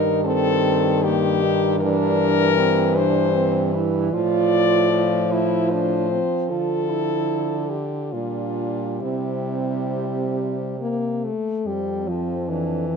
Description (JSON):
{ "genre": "classical, lyrical piece for horn quartet", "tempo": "67-78 BPM", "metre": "3/4", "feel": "rubato", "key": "F major", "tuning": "A4 = 440 Hz", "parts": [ { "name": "warm French horn", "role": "melody", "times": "0.0-13.0 s", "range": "E4 to D5", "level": "-24 LUFS", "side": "left 11 dB", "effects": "none" }, { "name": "warm French horn", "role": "second line", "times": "0.0-13.0 s", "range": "Bb3 to F4", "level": "-25 LUFS", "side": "right 11 dB", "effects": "none" }, { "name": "mellow French horn", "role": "accompaniment", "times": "0.0-13.0 s", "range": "Eb3 to Bb3", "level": "-24 LUFS", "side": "left 2 dB", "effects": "none" }, { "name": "clear French horn", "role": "bass", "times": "0.0-13.0 s", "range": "F2 to D3", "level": "-26 LUFS", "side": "right 3 dB", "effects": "none" } ], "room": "light reverb", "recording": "close, detailed microphones", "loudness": "-19 LUFS", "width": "side -5 dB against mid", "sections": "0.0-11.7 A section; 11.7-13.0 B section", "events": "none", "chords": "0.0 Eb/G; 1.8 C7/G; 4.1 F/A; 6.5 Dm; 8.1 Gm7/Bb; 9.0 C; 11.7 F", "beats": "0.26 1.04 | 1.81 2.58 3.35 | 4.13 4.92 5.71 | 6.50 7.29 8.12 | 9.01 9.90 10.79 | 11.66 12.48" }